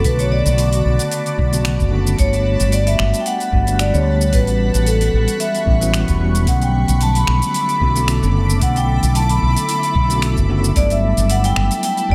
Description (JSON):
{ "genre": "sunset chillout", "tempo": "112 BPM", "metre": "4/4", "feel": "swing 54% on 16ths", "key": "B minor", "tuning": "A4 = 441 Hz", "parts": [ { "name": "vibraphone with medium hard mallets", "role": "melody", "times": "0.0-12.1 s", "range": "A4 to B5", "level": "-23 LUFS", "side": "equal", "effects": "delay" }, { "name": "bell-like tine electric piano", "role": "accompaniment", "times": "0.0-12.1 s", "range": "C#3 to A4", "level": "-25 LUFS", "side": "equal", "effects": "low-pass filter, digital delay" }, { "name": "shimmering ambient pad", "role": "sustained chords", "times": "0.0-12.1 s", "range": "D3 to D6", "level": "-30 LUFS", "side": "equal", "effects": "chorus, built-in reverb, phaser" }, { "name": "mellow fretless electric bass", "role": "bass", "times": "0.0-12.1 s", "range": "E1 to D2", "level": "-19 LUFS", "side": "equal", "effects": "none" }, { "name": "deep house drum kit", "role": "drums", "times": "0.0-12.1 s", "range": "finger snaps, hi-hat, shaker", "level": "-27 LUFS", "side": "equal", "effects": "overdrive, studio reverb" }, { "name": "electronic kick drum", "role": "drums", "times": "0.0-12.1 s", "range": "none", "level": "-22 LUFS", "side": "equal", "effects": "studio reverb" }, { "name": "twinkling granular texture", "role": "texture", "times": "7.2-12.1 s", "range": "E4 to E5", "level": "-37 LUFS", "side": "equal", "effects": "built-in reverb" } ], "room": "little or no reverb", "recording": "none", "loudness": "-16 LUFS", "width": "mono", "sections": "0.0-12.1 A section", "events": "filter sweep on tine electric piano 0.0-12.1", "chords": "0.0 Bm7; 2.2 Gmaj9; 4.3 A13; 6.5 Bm7; 10.8 Gmaj9" }